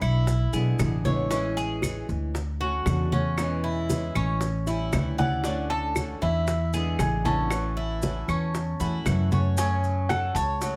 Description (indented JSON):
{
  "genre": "latin, Cuban son and guajira",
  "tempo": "116 BPM",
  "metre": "4/4",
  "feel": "straight",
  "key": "A major",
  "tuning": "A4 = 440 Hz",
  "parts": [
    { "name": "felt-muted upright piano", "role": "melody", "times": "0.0-0.5, 5.2-10.8 s", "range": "E5 to B5", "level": "-33 LUFS", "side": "equal", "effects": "none" },
    { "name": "flamenco guitar", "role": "accompaniment", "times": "0.0-10.8 s", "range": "B2 to F#4", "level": "-36 LUFS", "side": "equal", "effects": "none" },
    { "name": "Cuban tres", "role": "arpeggios", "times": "0.0-10.8 s", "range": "C#4 to D5", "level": "-34 LUFS", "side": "equal", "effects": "none" },
    { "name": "upright bass", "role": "bass", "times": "0.0-10.8 s", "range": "A1 to F#2", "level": "-29 LUFS", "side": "equal", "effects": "none" },
    { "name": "bongos", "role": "percussion", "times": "0.0-10.8 s", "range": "none", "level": "-38 LUFS", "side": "equal", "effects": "none" },
    { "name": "claves", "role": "percussion", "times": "0.0-10.4 s", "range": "none", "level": "-39 LUFS", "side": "equal", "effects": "none" },
    { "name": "congas", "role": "percussion", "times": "0.0-10.8 s", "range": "none", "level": "-33 LUFS", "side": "equal", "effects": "none" },
    { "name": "maracas", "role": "percussion", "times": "0.0-10.8 s", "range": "none", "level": "-44 LUFS", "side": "equal", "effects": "none" }
  ],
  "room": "light reverb",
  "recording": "none",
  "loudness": "-26 LUFS",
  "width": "mono",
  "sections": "0.0-9.6 A section; 9.6-10.8 B section",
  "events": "none",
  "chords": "0.0 E7; 1.3 Amaj7; 2.3 Dmaj7; 3.4 E6; 4.4 A7; 5.4 Dmaj7; 6.5 E7; 7.5 A6; 9.6 F#m"
}